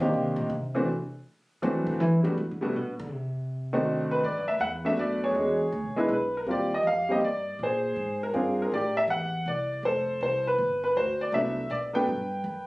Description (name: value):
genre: jazz piano trio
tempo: 161 BPM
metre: 3/4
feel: swing 65% on 8ths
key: G major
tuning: A4 = 440 Hz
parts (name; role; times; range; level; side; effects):
- warm upright piano; melody; 0.0-12.7 s; Eb3 to G5; -26 LUFS; equal; none
- upright bass; bass; 0.0-12.7 s; F1 to F#3; -33 LUFS; equal; none
room: moderate studio reverb, RT60 0.6 s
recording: recorded on a phone in the room, studio reverb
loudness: -25 LUFS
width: side -21 dB against mid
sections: 0.0-4.2 A section; 4.2-12.7 B section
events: upright bass solo 0.0-4.2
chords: 0.0 Cm7; 0.9 D9; 2.0 Gmaj9; 3.1 D7b9; 4.2 Gmaj9 (rootless); 5.4 E7; 6.5 Eb6; 7.6 Bb9; 8.7 Am7; 9.8 Fadd9; 11.0 Gmaj7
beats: 0.14 0.51 | 0.88 1.25 1.62 | 2.00 2.37 2.74 | 3.12 3.49 3.86 | 4.23 4.61 4.98 | 5.36 5.73 6.10 | 6.48 6.85 7.22 | 7.60 7.97 8.34 | 8.72 9.09 9.46 | 9.84 10.21 10.58 | 10.96 11.33 11.70 | 12.08 12.45